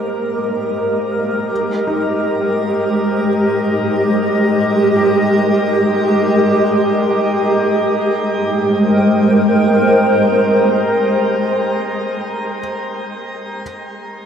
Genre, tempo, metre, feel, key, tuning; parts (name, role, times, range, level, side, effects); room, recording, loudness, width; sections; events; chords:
ambient; free time; Ab major; A4 = 442 Hz
granular cloud pad; sustained chords; 0.0-11.9 s; Ab3 to G5; -14 LUFS; equal; built-in reverb
felt-muted upright piano; arpeggios; 0.0-13.6 s; Eb4 to Ab4; -29 LUFS; equal; diffuse ambient delay
wet shimmer reverb, RT60 8.7 s; -13 LUFS; side -8 dB against mid
0.0-7.9 A section; 7.9-11.1 B section
fade-in on ambient pad 0.0-7.9; fade-out on felt piano 0.0-7.9
0.0 Abmaj9; 1.5 Cm7/Ab; 7.9 Abmaj9